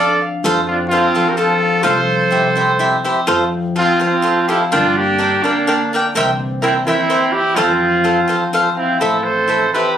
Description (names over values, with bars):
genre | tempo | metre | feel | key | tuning
mexican folk, mariachi | 126 BPM | 3/4 | straight | F major | A4 = 438 Hz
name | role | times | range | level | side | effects
clear trumpet | melody | 0.0-9.9 s | D4 to D5 | -16 LUFS | right 1 dB | none
bright trumpet | second line | 0.0-10.0 s | Bb3 to A4 | -20 LUFS | right 4 dB | none
cavaquinho | accompaniment | 0.0-9.9 s | D4 to G5 | -16 LUFS | equal | none
concert harp | arpeggios | 0.0-10.0 s | D3 to F5 | -23 LUFS | left 3 dB | none
upright bass | bass | 0.4-9.6 s | A1 to G2 | -24 LUFS | equal | none
room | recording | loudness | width
light reverb | recorded on a phone in the room, studio ambience, compression | -13 LUFS | side -9 dB against mid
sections
0.0-9.0 A section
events
none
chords
0.4 F; 1.9 F/C; 2.3 C; 3.3 F; 4.7 Gm; 6.1 C7; 7.6 F; 9.0 Am